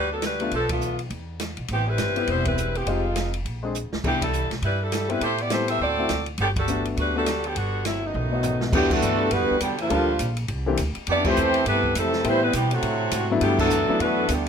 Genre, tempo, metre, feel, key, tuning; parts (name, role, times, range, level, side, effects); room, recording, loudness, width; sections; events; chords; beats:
jazz, big band swing; 205 BPM; 4/4; swing 60% on 8ths; G major, E minor from 8.7 s; A4 = 440 Hz
clear saxophone section; melody; 0.0-14.5 s; D3 to E5; -24 LUFS; equal
upright bass; bass; 0.0-14.5 s; E1 to B2; -28 LUFS; equal
open jazz drum kit; drums; 0.2-14.5 s; crash cymbal, hi-hat, kick drum, ride cymbal, snare drum, toms; -30 LUFS; equal
clear baby grand piano; accompaniment; 0.4-14.3 s; E3 to A4; -26 LUFS; left 4 dB
warm trombone section; second line; 8.0-14.5 s; F#2 to D4; -27 LUFS; right 2 dB
moderate studio ambience, RT60 0.5 s; -21 LUFS; side -7 dB against mid
0.0-8.7 A section; 8.7-14.5 B section
band accent 0.7, 2.4, 4.2, 6.5, 8.9, 11.2, 13.6; drum fill 3.7, 8.1-8.7
0.0 Gmaj7; 0.5 Bm7b5; 1.1 E5; 1.7 Am9; 2.9 Fm7; 3.5 Bb9; 4.0 Cmaj9; 5.2 Am7; 5.8 D7; 6.4 Gmaj7; 8.1 B7; 8.7 Em9; 9.9 Gm7; 10.5 C9; 11.1 Fmaj9; 12.2 Am9; 12.8 D7; 13.4 Gmaj13
0.23 | 0.52 0.82 1.11 1.40 | 1.70 1.99 2.28 2.58 | 2.87 3.16 3.46 3.75 | 4.04 4.34 4.63 4.92 | 5.22 5.51 5.80 6.09 | 6.39 6.68 6.97 7.27 | 7.56 7.86 8.15 8.44 | 8.73 9.03 9.32 9.61 | 9.90 10.20 10.49 10.78 | 11.08 11.37 11.66 11.95 | 12.25 12.54 12.83 13.12 | 13.42 13.71 14.00 14.30